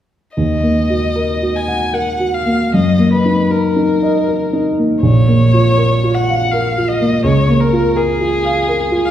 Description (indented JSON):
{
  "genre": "classical, slow romantic movement for piano quintet",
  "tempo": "75-84 BPM",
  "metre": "3/4",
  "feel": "rubato",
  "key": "Eb minor",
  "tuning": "A4 = 438 Hz",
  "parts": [
    { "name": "warm violin", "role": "melody", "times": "0.4-9.1 s", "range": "Ab4 to Ab5", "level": "-18 LUFS", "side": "left 3 dB", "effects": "none" },
    { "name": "dark baby grand piano", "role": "accompaniment", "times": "0.4-9.1 s", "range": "Bb1 to Gb5", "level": "-13 LUFS", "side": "equal", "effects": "none" }
  ],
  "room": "wet recital hall reverb, RT60 1.5 s",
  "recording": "heard from further back in the room",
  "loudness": "-12 LUFS",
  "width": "side -10 dB against mid",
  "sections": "0.4-9.1 A section",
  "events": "none",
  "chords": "0.4 Ebm; 2.7 Ebm/Gb; 5.0 Bbm; 7.2 Bbm/Db",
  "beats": "| 0.38 1.16 1.94 | 2.73 3.50 4.27 | 5.03 5.77 6.52 | 7.24 7.97 8.69"
}